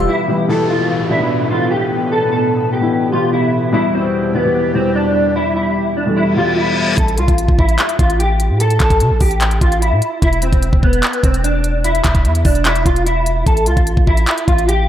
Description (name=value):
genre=hip hop, trap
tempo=148 BPM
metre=4/4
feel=half-time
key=unclear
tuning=A4 = 440 Hz
part: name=mellow electric guitar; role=melody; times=0.0-14.9 s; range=B3 to A4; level=-17 LUFS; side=equal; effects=ensemble chorus, low-pass filter
part: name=dark concert grand piano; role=accompaniment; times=0.0-7.0 s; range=B2 to A4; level=-19 LUFS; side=left 2 dB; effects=wide subtle chorus, low-pass filter
part: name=airy breathy pad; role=sustained chords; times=0.0-6.9 s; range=E2 to B4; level=-20 LUFS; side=right 1 dB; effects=chorus
part: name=long sustained 808-style bass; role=bass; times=0.0-0.1, 7.0-14.9 s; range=E1 to C3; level=-16 LUFS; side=equal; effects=none
part: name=downlifter and reverse cymbal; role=sound effects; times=0.5-7.0 s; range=none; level=-26 LUFS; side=left 2 dB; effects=none
part: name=trap drum kit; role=drums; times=7.0-14.8 s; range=handclaps, hi-hat, kick drum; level=-16 LUFS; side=equal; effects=none
room=moderate plate reverb, RT60 2.1 s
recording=dreamy mix soaked in reverb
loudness=-12 LUFS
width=side -11 dB against mid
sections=0.5-7.0 A section; 7.0-14.9 B section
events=break 0.1-0.5; reverse cymbal 6.3-7.0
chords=0.5 Asus2; 3.7 Em; 7.0 A5; 10.2 E5; 13.5 A5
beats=0.09 | 0.49 0.90 1.30 1.71 | 2.11 2.52 2.92 3.33 | 3.73 4.14 4.55 4.95 | 5.36 5.76 6.17 6.57 | 6.98 7.38 7.79 8.20 | 8.60 9.01 9.41 9.82 | 10.22 10.63 11.03 11.44 | 11.84 12.25 12.65 13.06 | 13.46 13.87 14.28 14.68